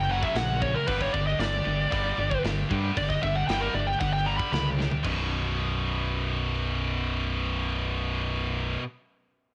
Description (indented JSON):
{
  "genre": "heavy metal",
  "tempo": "115 BPM",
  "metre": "4/4",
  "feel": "straight",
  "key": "B harmonic minor",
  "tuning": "A4 = 440 Hz",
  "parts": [
    { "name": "bluesy overdriven lead guitar", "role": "melody", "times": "0.0-4.7 s", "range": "A#4 to B5", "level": "-31 LUFS", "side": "equal", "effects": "distortion, cassette tape" },
    { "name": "heavy high-gain guitar", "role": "riff", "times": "0.0-8.8 s", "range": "B1 to G3", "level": "-33 LUFS", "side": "equal", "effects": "distortion" },
    { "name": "scooped high-gain guitar", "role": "riff", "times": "0.0-8.8 s", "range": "B1 to G4", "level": "-38 LUFS", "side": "equal", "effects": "distortion" },
    { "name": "growling fingered electric bass", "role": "bass", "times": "0.0-8.8 s", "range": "B0 to G2", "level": "-32 LUFS", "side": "equal", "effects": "overdrive" },
    { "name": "tight metal drum kit", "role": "drums", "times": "0.2-5.2 s", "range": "crash cymbal, hi-hat, kick drum, snare drum, toms", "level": "-37 LUFS", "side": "equal", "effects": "cassette tape" }
  ],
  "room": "studio reverb",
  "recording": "home recording on cassette",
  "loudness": "-27 LUFS",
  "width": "mono",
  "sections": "0.0-5.0 A section; 5.0-9.2 B section",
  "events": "lead electric guitar solo 0.0-5.0; drum fill 4.8",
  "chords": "0.0 F#; 0.9 G5; 5.0 B5"
}